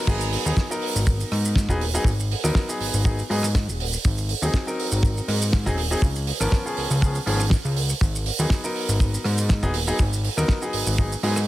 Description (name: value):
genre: nu-disco, nu disco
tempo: 121 BPM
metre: 4/4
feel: swing 53% on 16ths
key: G# dorian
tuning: A4 = 440 Hz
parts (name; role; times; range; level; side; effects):
- clear baby grand piano; accompaniment; 0.0-11.4 s; E#3 to A#4; -28 LUFS; left 1 dB; vintage 12-bit sampler grit, tape echo
- fat analog bass; bass; 0.1-11.5 s; D#1 to G#2; -24 LUFS; equal; none
- damped 70s drum kit; drums; 0.1-11.5 s; crash cymbal, hi-hat, rim click, shaker, snare drum; -27 LUFS; right 4 dB; none
- kick drum; drums; 0.1-11.1 s; none; -20 LUFS; equal; none
room: studio ambience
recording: none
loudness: -20 LUFS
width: side -15 dB against mid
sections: 0.1-11.5 A section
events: band accent 0.0; drop 0.1-11.5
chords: 0.1 G#m7; 4.0 G#7; 6.0 C#7; 8.0 G#m7